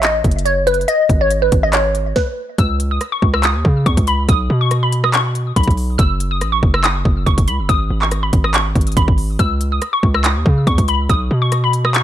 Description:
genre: hip hop, trap.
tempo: 141 BPM.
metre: 4/4.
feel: half-time.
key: C# minor.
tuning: A4 = 440 Hz.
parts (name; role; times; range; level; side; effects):
glassy wavetable pluck; melody; 0.0-12.0 s; B4 to E6; -18 LUFS; equal; chorus, low-pass filter, ping-pong delay.
hard-hitting 808-style bass; bass; 0.0-12.0 s; F#1 to C#3; -17 LUFS; equal; none.
trap drum kit; drums; 0.0-12.0 s; handclaps, hi-hat, kick drum, rim click, snare drum; -16 LUFS; equal; none.
room: digital ambience.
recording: none.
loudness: -13 LUFS.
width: side -11 dB against mid.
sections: 0.0-2.6 A section; 2.6-12.0 B section.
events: stop 2.2-2.6.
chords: 0.0 F#m; 0.9 G#sus4; 2.6 C#m; 4.3 Badd9; 6.0 N.C.; 7.7 G#sus4; 9.4 C#m; 11.1 Badd9.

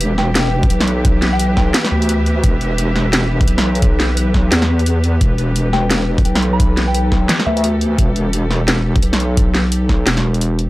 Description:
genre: half-time drum and bass.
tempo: 173 BPM.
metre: 4/4.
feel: swing 60% on 16ths, half-time.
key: E minor.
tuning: A4 = 440 Hz.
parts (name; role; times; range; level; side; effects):
warm symphonic cello section; sustained chords; 0.0-10.7 s; E3 to E5; -26 LUFS; equal; sidechain pumping.
deep soft wobble bass; bass; 0.0-10.7 s; E1 to E2; -16 LUFS; equal; chorus.
drum and bass drum kit; drums; 0.0-10.7 s; hi-hat, snare drum; -18 LUFS; equal; none.
pulsing gated texture; texture; 0.0-10.7 s; B4; -28 LUFS; equal; chorus, built-in reverb.
soft synth bell; melody; 0.2-1.7, 5.7-7.6 s; E5 to B5; -24 LUFS; left 2 dB; chorus, phaser, tape echo.
electronic kick drum; drums; 0.6-10.0 s; none; -14 LUFS; equal; none.
room: digital ambience.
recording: dry, gritty hardware recording, transformer saturation.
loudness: -13 LUFS.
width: side -18 dB against mid.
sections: 0.0-10.7 A section.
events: none.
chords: 0.0 Em.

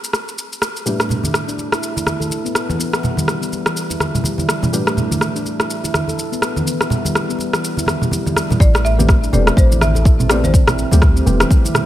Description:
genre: afro house.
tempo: 124 BPM.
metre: 4/4.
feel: swing 58% on 16ths.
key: A minor.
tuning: A4 = 440 Hz.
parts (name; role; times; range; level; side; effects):
felt-muted upright piano; stabs; 0.0-11.9 s; A2 to G4; -25 LUFS; left 1 dB; sidechain pumping, digital delay.
deep house drum kit; drums; 0.0-11.9 s; rim click, shaker, toms; -20 LUFS; equal; studio reverb.
handpan; arpeggios; 1.0-11.7 s; E3 to A4; -23 LUFS; equal; sidechain pumping, digital delay.
congas; percussion; 1.1-11.9 s; none; -22 LUFS; right 2 dB; none.
folk marimba with medium hard mallets; melody; 8.6-11.4 s; C5 to E5; -23 LUFS; left 2 dB; digital delay.
warm 808-style bass; bass; 8.6-11.4 s; E1 to D2; -16 LUFS; equal; sidechain pumping.
electronic kick drum; drums; 8.6-11.6 s; none; -12 LUFS; equal; studio reverb.
room: light reverb, small room ambience.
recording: none.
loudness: -14 LUFS.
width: side -13 dB against mid.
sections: 0.0-8.6 A section; 8.6-11.9 B section.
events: drop 8.6-11.9.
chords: 0.0 Am9; 0.9 G/A; 8.6 Am9.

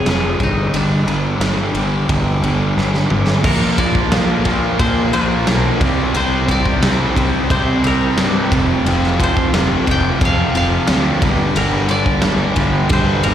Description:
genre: quiet-loud alternative rock.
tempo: 89 BPM.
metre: 4/4.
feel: straight.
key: Bb major.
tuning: A4 = 438 Hz.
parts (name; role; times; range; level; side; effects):
koto; melody; 0.0-13.3 s; D4 to G5; -24 LUFS; left 1 dB; slapback echo.
fuzz guitar; riff; 0.0-13.3 s; F2 to C4; -19 LUFS; equal; distortion.
fuzz fingered electric bass; bass; 0.0-13.3 s; F1 to C3; -19 LUFS; equal; overdrive.
big rock drum kit; drums; 0.1-13.3 s; crash cymbal, kick drum, ride cymbal, snare drum, toms; -19 LUFS; equal; none.
sludgy distorted guitar; riff; 3.5-13.3 s; F2 to C4; -22 LUFS; equal; overdrive.
room: small room ambience.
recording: live gig heard through the venue's PA, recital hall reverb.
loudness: -13 LUFS.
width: side -10 dB against mid.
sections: 0.0-3.4 A section; 3.4-13.3 B section.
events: koto solo 0.0-3.4; drum fill 2.8-3.4.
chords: 0.4 G5; 3.4 Bb; 5.8 C5; 8.5 F5; 11.2 Gm.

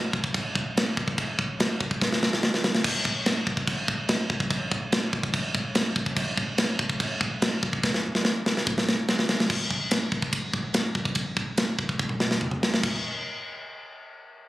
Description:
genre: metal.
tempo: 144 BPM.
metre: 4/4.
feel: straight.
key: none.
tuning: none.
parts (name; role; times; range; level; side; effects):
tight metal drum kit; drums; 0.1-12.9 s; china cymbal, crash cymbal, kick drum, ride cymbal, snare drum, toms; -24 LUFS; equal; none.
room: light reverb.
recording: recorded on a phone in the room, club reverb, compression.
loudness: -24 LUFS.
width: side -17 dB against mid.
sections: 0.0-2.8 A section; 2.8-9.5 B section; 9.5-12.8 C section; 12.8-14.5 D section.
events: drum fill 2.0-2.8, 7.8-9.5, 12.0-12.8.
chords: none.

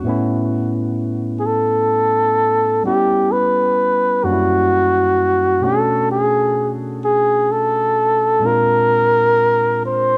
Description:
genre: R&B.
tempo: 43 BPM (dotted quarters).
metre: 6/8.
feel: straight.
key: unclear.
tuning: A4 = 440 Hz.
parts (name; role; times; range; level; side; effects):
barky tine electric piano; accompaniment; 0.0-10.2 s; F#2 to F#4; -24 LUFS; equal; cassette tape.
warm flugelhorn; melody; 1.4-10.2 s; F#4 to B#4; -17 LUFS; equal; cassette tape.
room: moderate studio reverb, RT60 0.6 s.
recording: home recording on cassette.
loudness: -17 LUFS.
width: mono.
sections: 0.0-10.2 A section.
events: none.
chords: 0.1 A; 2.8 C#m7b5; 4.2 F#7b9; 5.6 Bm7; 8.4 A#9.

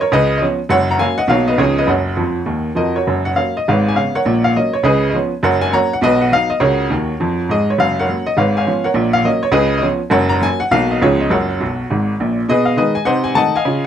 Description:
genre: jazz, stride piano.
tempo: 204 BPM.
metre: 4/4.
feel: swing 64% on 8ths.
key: F# major.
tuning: A4 = 439 Hz.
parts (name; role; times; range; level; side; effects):
clear upright piano; solo; 0.0-13.9 s; F#1 to A#5; -13 LUFS; equal; none.
room: light reverb.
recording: close, detailed microphones.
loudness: -13 LUFS.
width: side -9 dB against mid.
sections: 0.0-3.1 A section; 3.1-12.5 A section; 12.5-13.9 B section.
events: upright piano fill 2.2-3.1, 6.9-7.8, 11.6-12.5.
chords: 0.1 C#7; 0.7 F#; 1.3 Bmaj7; 1.6 C#9; 1.9 F#; 3.7 C#5/G#; 4.3 F#/A#; 4.8 C#7; 5.4 F#; 6.0 B; 6.6 F#/C#; 7.2 C#; 7.8 F#; 8.4 C#7/G#; 9.0 F#/A#; 9.6 C#7; 10.1 F#; 10.7 Bmaj7; 11.0 C#9; 11.3 F#; 12.5 G#m/B; 13.1 Cdim7.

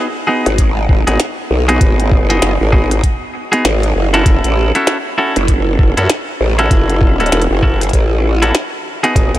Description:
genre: glitch hop.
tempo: 98 BPM.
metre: 4/4.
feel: swing 60% on 16ths.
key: F# dorian.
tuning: A4 = 444 Hz.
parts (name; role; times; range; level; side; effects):
semi-hollow electric guitar; stabs; 0.0-9.4 s; B3 to A4; -17 LUFS; equal; sidechain pumping, tape echo.
growl bass; bass; 0.5-9.4 s; E1 to F#2; -14 LUFS; equal; chorus, tube saturation.
glitchy drum kit; drums; 0.5-9.4 s; hi-hat, rim click, snare drum; -22 LUFS; equal; none.
electronic kick drum; drums; 0.6-9.3 s; none; -12 LUFS; equal; none.
room: light reverb.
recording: none.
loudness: -11 LUFS.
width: side -14 dB against mid.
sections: 0.0-9.4 A section.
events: none.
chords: 0.0 G#m7; 4.3 F#m7.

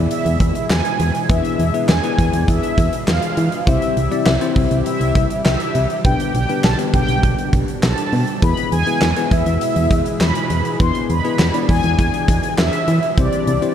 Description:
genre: synth-pop.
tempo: 101 BPM.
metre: 4/4.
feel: straight.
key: unclear.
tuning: A4 = 439 Hz.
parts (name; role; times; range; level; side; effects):
mellow synth brass; melody; 0.0-13.7 s; D5 to C6; -22 LUFS; equal; chorus.
bell-like tine electric piano; accompaniment; 0.0-13.7 s; B3 to D5; -23 LUFS; left 7 dB; none.
chorused pulse-width pad; sustained chords; 0.0-13.7 s; B2 to G#4; -25 LUFS; right 1 dB; none.
solid FM bass; bass; 0.0-13.6 s; B1 to E3; -18 LUFS; equal; none.
huge arena drum kit; drums; 0.1-13.7 s; handclaps, hi-hat, kick drum, snare drum; -20 LUFS; equal; none.
room: light reverb.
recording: dark, warm production.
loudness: -15 LUFS.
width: side -9 dB against mid.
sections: 0.0-13.7 A section.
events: none.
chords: 0.0 E; 3.7 C; 6.0 G/B; 8.4 E; 13.2 C.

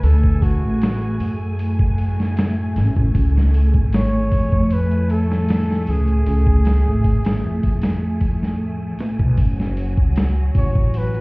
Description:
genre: trip hop.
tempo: 77 BPM.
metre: 4/4.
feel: straight.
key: unclear.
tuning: A4 = 440 Hz.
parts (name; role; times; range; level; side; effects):
trumpet with bucket mute; melody; 0.0-11.2 s; F#4 to C#5; -29 LUFS; equal; tape echo.
string machine, cellos; sustained chords; 0.0-11.2 s; F#3 to G#5; -24 LUFS; equal; phaser, ensemble chorus.
upright bass; bass; 0.0-11.2 s; F#1 to F#2; -18 LUFS; equal; none.
dusty soul sampler-style drum kit; drums; 0.0-11.2 s; hi-hat, kick drum, snare drum; -19 LUFS; equal; none.
wind-like tuned noise texture; texture; 0.0-11.2 s; G#5; -42 LUFS; right 2 dB; built-in reverb.
room: little or no reverb.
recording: heard muffled through a wall, stone room reverb, vinyl crackle, EQ.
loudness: -16 LUFS.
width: side -26 dB against mid.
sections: 0.0-11.2 A section.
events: none.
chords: 0.0 D; 3.2 C#; 9.4 F#madd9.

